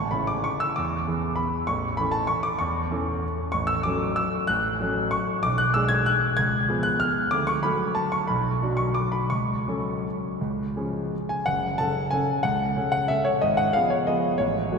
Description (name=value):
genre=classical, piano waltz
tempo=159-206 BPM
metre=3/4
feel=rubato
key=A major, F# minor from 3.5 s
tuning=A4 = 440 Hz
part: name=clear concert grand piano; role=solo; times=0.0-14.8 s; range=F#1 to G#6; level=-22 LUFS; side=equal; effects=none
room=wet cathedral reverb, RT60 4.9 s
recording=minimal, uncompressed stereo recording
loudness=-22 LUFS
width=side -5 dB against mid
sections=0.0-11.5 A section; 11.5-14.8 B section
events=none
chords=0.0 A; 0.8 E7; 1.7 A; 3.5 F#m/A; 5.4 G#m7b5/B; 6.4 C#7; 7.3 D; 8.3 Bm; 9.3 F#m/C#; 10.4 C#; 11.5 F#m; 13.4 Fdim/Ab